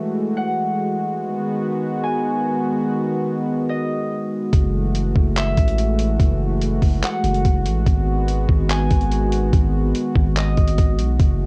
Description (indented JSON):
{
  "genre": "hip hop, atmospheric cloud-rap",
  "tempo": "144 BPM",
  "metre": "4/4",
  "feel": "half-time",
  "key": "unclear",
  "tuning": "A4 = 440 Hz",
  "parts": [
    { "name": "Celtic harp", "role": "melody", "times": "0.0-11.5 s", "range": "D#5 to G#5", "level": "-30 LUFS", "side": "equal", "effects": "low-pass filter, cassette tape, analog delay" },
    { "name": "warm analog pad", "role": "sustained chords", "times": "0.0-11.5 s", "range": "D#3 to F#4", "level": "-25 LUFS", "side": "equal", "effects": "chorus, sidechain pumping, cassette tape" },
    { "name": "long sustained 808-style bass", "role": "bass", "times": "4.5-11.5 s", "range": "F#1 to B1", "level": "-22 LUFS", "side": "equal", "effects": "none" },
    { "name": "boom bap sampler-style drum kit", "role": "drums", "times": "4.5-11.3 s", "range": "handclaps, hi-hat, kick drum", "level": "-21 LUFS", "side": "equal", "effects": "cassette tape" }
  ],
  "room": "little or no reverb",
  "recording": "home recording on cassette",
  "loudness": "-20 LUFS",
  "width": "mono",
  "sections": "0.0-11.5 A section",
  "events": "none",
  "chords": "0.0 F#m9; 1.2 G#m7; 4.5 F#m9; 7.9 G#m7"
}